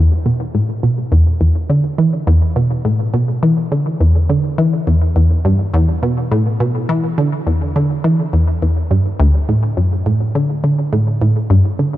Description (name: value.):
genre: ambient.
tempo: 104 BPM.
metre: 4/4.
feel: straight.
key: E minor.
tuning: A4 = 440 Hz.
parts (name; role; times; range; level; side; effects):
resonant blip pluck; solo; 0.0-12.0 s; D2 to E3; -13 LUFS; equal; chorus, analog delay.
room: little or no reverb.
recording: none.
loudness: -13 LUFS.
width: side -14 dB against mid.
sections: 0.0-11.5 A section.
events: none.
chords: none.